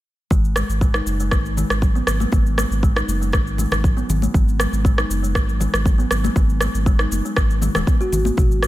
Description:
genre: afro house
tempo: 119 BPM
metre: 4/4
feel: straight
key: G# minor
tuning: A4 = 440 Hz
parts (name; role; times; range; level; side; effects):
- kalimba; arpeggios; 0.3-8.7 s; F#3 to F#4; -26 LUFS; equal; sidechain pumping, ping-pong delay
- warm sub bass; bass; 0.3-8.7 s; D#1 to G#1; -22 LUFS; equal; tube saturation, sidechain pumping
- afro-pop drum kit; drums; 0.3-8.7 s; rim click, shaker, toms; -24 LUFS; equal; none
- electronic kick drum; drums; 0.3-8.5 s; none; -18 LUFS; equal; none
- congas; percussion; 0.3-8.5 s; none; -28 LUFS; left 4 dB; none
- dark analog pad; sustained chords; 8.4-8.7 s; none; barely audible; none; none
room: little or no reverb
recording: none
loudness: -16 LUFS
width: side -16 dB against mid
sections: 0.3-8.7 A section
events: none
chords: 0.3 G#m7

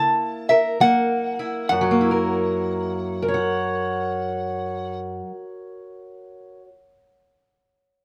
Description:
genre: acoustic country blues, solo or duo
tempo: 66 BPM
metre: 4/4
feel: swing 65% on 8ths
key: F# mixolydian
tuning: A4 = 440 Hz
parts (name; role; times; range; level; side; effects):
- metal-body resonator slide guitar; melody; 0.0-5.0 s; E5 to A5; -22 LUFS; equal; none
- fingerpicked steel-string acoustic guitar; accompaniment; 0.0-6.7 s; F#2 to F#5; -25 LUFS; equal; none
room: moderate studio reverb, RT60 0.6 s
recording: none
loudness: -22 LUFS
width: mono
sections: 0.0-1.7 A section; 1.7-5.4 B section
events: slowing down 0.0-1.7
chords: 0.0 F#7

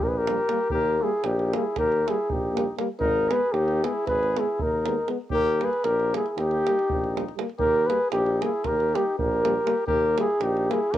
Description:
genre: balkan folk, Balkan brass band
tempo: 236 BPM (eighths)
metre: 9/8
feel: straight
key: unclear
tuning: A4 = 440 Hz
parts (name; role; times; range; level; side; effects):
- mellow flugelhorn; melody; 0.0-11.0 s; G4 to Cb5; -24 LUFS; equal; cassette tape
- warm trumpet; second line; 0.0-11.0 s; Eb4 to Ab4; -34 LUFS; left 8 dB; plate reverb
- warm tuba; bass; 0.0-11.0 s; Ab1 to Eb2; -29 LUFS; equal; none
- clear euphonium; accompaniment; 0.3-10.8 s; Bb3 to Cb4; -32 LUFS; left 9 dB; none
- warm euphonium; accompaniment; 0.3-10.8 s; G3 to Ab3; -34 LUFS; right 9 dB; none
- davul; percussion; 0.3-11.0 s; none; -33 LUFS; right 5 dB; none
room: light reverb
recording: home recording on cassette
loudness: -22 LUFS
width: side -12 dB against mid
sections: 0.0-7.6 A section; 7.6-11.0 A section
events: none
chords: 0.0 Eb; 3.0 Abm; 5.3 Eb

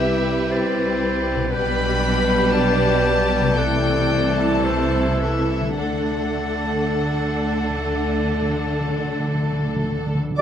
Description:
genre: classical, slow romantic movement for symphony orchestra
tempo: 51-60 BPM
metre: 4/4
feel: rubato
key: unclear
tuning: A4 = 440 Hz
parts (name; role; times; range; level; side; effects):
- rich chamber violin section; melody; 0.0-10.4 s; E5 to B5; -29 LUFS; left 4 dB; none
- clear clarinet; second line; 0.0-10.0 s; G4 to D5; -28 LUFS; left 2 dB; none
- mellow silver concert flute; second line; 0.0-10.0 s; E6 to A6; -30 LUFS; equal; none
- rich studio violin section; second line; 0.0-10.2 s; G4 to B4; -29 LUFS; equal; none
- rich studio viola section; accompaniment; 0.0-10.2 s; E3 to E4; -26 LUFS; right 2 dB; none
- warm French horn section; sustained chords; 0.0-10.0 s; G3 to B4; -27 LUFS; left 2 dB; none
- concert harp; arpeggios; 0.0-9.6 s; B2 to D5; -30 LUFS; left 6 dB; none
- clear studio cello section; bass; 0.0-10.2 s; B2 to D3; -27 LUFS; right 2 dB; none
- clear studio double bass section; bass; 0.0-10.2 s; B1 to D2; -26 LUFS; right 2 dB; none
- timpani; percussion; 5.8-10.4 s; D3; -27 LUFS; equal; none
room: wet scoring stage reverb, RT60 1.7 s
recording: none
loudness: -18 LUFS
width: side -9 dB against mid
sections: 0.0-10.4 A section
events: timpani fill 5.8-10.4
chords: 0.0 Cmaj7; 1.5 G/B; 3.6 Am7/C; 5.8 D

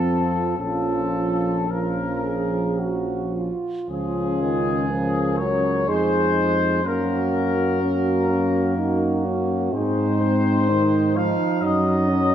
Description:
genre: classical, hymn-like piece for brass band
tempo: 52-65 BPM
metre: 3/4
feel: rubato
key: Bb minor, Db major from 3.9 s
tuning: A4 = 440 Hz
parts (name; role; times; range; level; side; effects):
- warm trumpet section; melody; 0.0-12.3 s; Ab4 to F5; -26 LUFS; left 4 dB; none
- mellow French horn section; second line; 0.0-12.3 s; Eb4 to Bb4; -27 LUFS; right 4 dB; none
- clear trombone; accompaniment; 0.0-12.3 s; Eb3 to Bb3; -28 LUFS; right 2 dB; none
- warm euphonium; accompaniment; 0.0-12.3 s; C4 to Eb4; -26 LUFS; left 2 dB; none
- mellow tuba; bass; 0.0-12.3 s; Bb1 to Ab2; -25 LUFS; equal; none
room: moderate concert hall reverb, RT60 2.3 s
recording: none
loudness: -19 LUFS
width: side -10 dB against mid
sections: 0.0-3.9 A section; 3.9-12.3 B section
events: none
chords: 0.0 F; 0.6 Bbm; 3.9 Db; 5.9 Fm7; 6.8 Gb; 9.7 Ab; 11.6 Ebm7/Gb

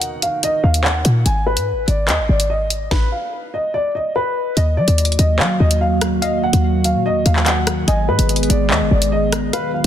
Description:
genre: hip hop, drill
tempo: 145 BPM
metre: 4/4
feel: half-time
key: Eb harmonic minor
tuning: A4 = 440 Hz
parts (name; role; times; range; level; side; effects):
- dark concert grand piano; melody; 0.0-9.9 s; Cb5 to Ab5; -20 LUFS; equal; ping-pong delay
- felt-muted upright piano; accompaniment; 0.0-1.3 s; Eb3 to Bb4; -32 LUFS; right 6 dB; none
- short 808-style bass; bass; 0.0-9.9 s; Ab1 to Gb3; -17 LUFS; equal; none
- drill drum kit; drums; 0.0-9.9 s; handclaps, hi-hat, kick drum, rim click, snare drum; -20 LUFS; left 1 dB; none
- soft round pluck; second line; 4.6-9.9 s; Eb5 to F5; -28 LUFS; left 2 dB; chorus, ping-pong delay
- dark analog pad; sustained chords; 4.6-9.9 s; Eb3 to Ab4; -21 LUFS; right 1 dB; chorus
room: light reverb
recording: dense, heavily limited modern master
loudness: -15 LUFS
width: side -10 dB against mid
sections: 0.0-4.6 A section; 4.6-9.9 B section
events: break 0.0-2.9; stop 2.9-4.6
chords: 0.0 Ebm; 1.3 Abm; 2.9 N.C.; 4.6 Ebm; 7.9 Abm

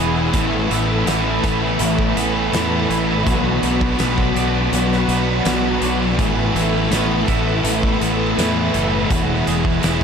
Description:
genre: rock, shoegaze and dream pop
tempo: 82 BPM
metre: 4/4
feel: straight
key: unclear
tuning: A4 = 440 Hz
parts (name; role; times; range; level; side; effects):
- string machine, violins; sustained chords; 0.0-10.0 s; F#4 to B5; -25 LUFS; equal; ensemble chorus
- twangy electric guitar; arpeggios; 0.0-10.0 s; E3 to G#4; -27 LUFS; right 6 dB; lush chorus, ping-pong delay
- overdriven electric guitar; riff; 0.0-10.0 s; E2 to F#4; -23 LUFS; right 10 dB; reverse reverb
- thick fuzz guitar; riff; 0.0-10.0 s; E2 to B3; -20 LUFS; left 5 dB; distortion, analog chorus
- growling fingered electric bass; bass; 0.0-10.0 s; E1 to E2; -23 LUFS; equal; overdrive
- loose indie drum kit; drums; 0.3-10.0 s; hi-hat, kick drum, snare drum; -24 LUFS; equal; none
room: wet huge ambient reverb, RT60 8.4 s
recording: dreamy mix soaked in reverb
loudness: -16 LUFS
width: side -6 dB against mid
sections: 0.0-10.0 A section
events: none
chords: 0.3 Asus2; 3.3 Bm; 6.2 Asus2; 9.1 Eadd9

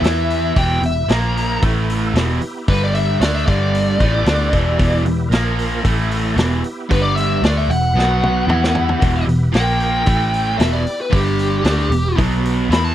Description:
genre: blues rock power trio and southern rock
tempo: 114 BPM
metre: 4/4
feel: straight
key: E minor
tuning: A4 = 440 Hz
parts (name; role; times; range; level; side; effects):
- smooth overdriven lead guitar; melody; 0.0-12.9 s; G4 to B5; -21 LUFS; left 2 dB; none
- overdriven tonewheel organ; sustained chords; 0.0-12.9 s; G3 to B4; -30 LUFS; right 2 dB; chorus vibrato, fast rotary speaker
- distorted electric guitar; riff; 0.0-12.9 s; E2 to E4; -20 LUFS; right 1 dB; distortion
- vintage muted picked electric bass; bass; 0.0-12.9 s; E1 to E2; -19 LUFS; equal; none
- vintage drum kit; drums; 0.0-12.8 s; hi-hat, kick drum, snare drum, toms; -20 LUFS; equal; none
room: little or no reverb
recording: dry, close 1970s-style studio recording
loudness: -14 LUFS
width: side -12 dB against mid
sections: 0.0-12.9 A section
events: drum fill 8.0-9.0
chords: 0.0 Em; 1.1 A#5; 1.6 A5; 2.1 Em; 2.7 G5; 3.2 Dsus2; 3.5 G5; 4.0 Em; 5.3 A#5; 5.8 A5; 6.4 Em; 6.9 G5; 7.4 Em; 8.0 B5; 8.5 Em; 9.5 A#5; 10.1 A5; 10.6 Em; 11.1 G5; 11.7 Em; 12.2 B5

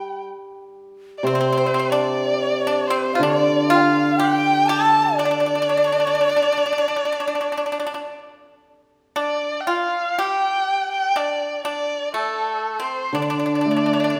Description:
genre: chinese traditional, Chinese chamber ensemble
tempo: 61 BPM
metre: 4/4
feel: rubato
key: D yu mode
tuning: A4 = 440 Hz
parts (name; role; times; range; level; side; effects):
- dark erhu; melody; 0.0-14.2 s; A4 to A5; -25 LUFS; equal; none
- breathy low xiao; second line; 0.0-8.2 s; C5 to A5; -25 LUFS; equal; none
- pipa; second line; 0.0-14.2 s; A3 to A4; -27 LUFS; equal; none
- hammered dulcimer; accompaniment; 0.0-6.1, 13.1-14.2 s; C3 to D4; -25 LUFS; equal; none
room: wet recital hall reverb, RT60 1.8 s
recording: none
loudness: -20 LUFS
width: mono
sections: 0.0-9.2 A section; 9.2-14.2 B section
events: none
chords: none

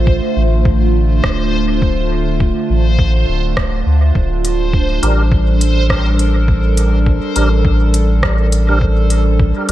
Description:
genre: ambient dub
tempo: 103 BPM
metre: 4/4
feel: swing 57% on 16ths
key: unclear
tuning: A4 = 440 Hz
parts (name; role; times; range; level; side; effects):
- warbly tape-like pad; sustained chords; 0.0-9.7 s; D3 to C5; -19 LUFS; right 1 dB; chorus, built-in reverb, phaser
- soft dub sub bass; bass; 0.0-9.7 s; D1 to D2; -14 LUFS; equal; none
- backwards swelling texture; texture; 0.0-9.7 s; C5; -25 LUFS; left 1 dB; built-in reverb
- electronic kick drum; drums; 0.1-9.5 s; none; -16 LUFS; equal; none
- organic electronic drum kit; drums; 1.2-9.7 s; hi-hat, rim click; -22 LUFS; equal; dub echo
- tonewheel organ; stabs; 5.0-9.7 s; D4 to Bb4; -22 LUFS; right 1 dB; overdrive, chorus vibrato, slow rotary speaker, dub echo
room: digital ambience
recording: none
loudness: -12 LUFS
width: side -14 dB against mid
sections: 0.0-9.7 A section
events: none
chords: 0.0 Dm7; 4.2 Gm/D

